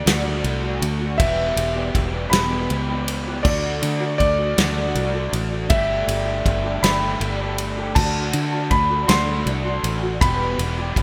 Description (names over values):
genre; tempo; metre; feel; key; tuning
folk rock and heartland rock; 53 BPM (dotted quarters); 6/8; straight; unclear; A4 = 441 Hz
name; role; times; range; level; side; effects
warm grand piano; melody; 0.0-11.0 s; D5 to C6; -27 LUFS; equal; lush chorus, digital delay
picked old ladder-braced acoustic guitar; accompaniment; 0.0-11.0 s; E2 to G4; -31 LUFS; equal; ensemble chorus
raw garage guitar; riff; 0.0-11.0 s; E2 to G4; -31 LUFS; equal; overdrive, lush chorus
fingered electric bass; bass; 0.0-11.0 s; E1 to D3; -27 LUFS; equal; none
natural country drum kit; drums; 0.1-11.0 s; crash cymbal, kick drum, ride cymbal, snare drum; -26 LUFS; equal; gated reverb
room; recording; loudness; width
light reverb, small room ambience; bright 1980s-style digital production; -21 LUFS; mono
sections
0.0-11.0 A section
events
none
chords
0.0 D; 1.2 Em; 3.5 D; 5.7 Gsus2; 8.0 D; 10.2 Em